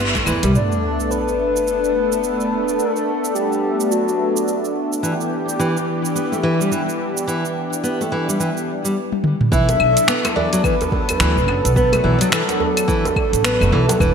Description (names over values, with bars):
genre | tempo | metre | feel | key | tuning
organic downtempo | 107 BPM | 4/4 | swing 60% on 16ths | unclear | A4 = 440 Hz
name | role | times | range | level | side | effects
warm analog pad | sustained chords | 0.0-14.1 s | E3 to C6 | -22 LUFS | left 1 dB | chorus, sidechain pumping
nylon-string guitar | arpeggios | 0.0-0.5, 5.0-14.1 s | E3 to B3 | -22 LUFS | left 1 dB | vintage 12-bit sampler grit, ping-pong delay
upright bass | bass | 0.0-0.5, 9.5-14.1 s | E1 to E2 | -20 LUFS | equal | sidechain pumping
afro-pop drum kit | drums | 0.2-14.1 s | claves, finger snaps, hi-hat, shaker, toms | -22 LUFS | equal | studio reverb, gated reverb
electronic kick drum | drums | 0.2, 9.5-14.1 s | none | -22 LUFS | equal | overdrive, studio reverb
djembe | percussion | 0.2-0.5, 9.7-14.0 s | none | -29 LUFS | right 3 dB | none
sub drop | sound effects | 0.5-2.8 s | none | -27 LUFS | right 1 dB | none
breathy flute-like synth lead | melody | 0.6-4.8, 9.5-14.1 s | F#4 to E5 | -20 LUFS | equal | wide subtle chorus, digital delay
room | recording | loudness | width
moderate lush hall reverb, RT60 1.8 s, digital ambience | bright 1980s-style digital production | -16 LUFS | side -6 dB against mid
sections
0.5-9.5 A section; 9.5-14.1 B section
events
band accent 0.0; impact 0.5-2.8; drum fill 9.1-9.5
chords
0.0 Cmaj7; 0.5 Bm7; 5.0 Em7; 9.5 Bm7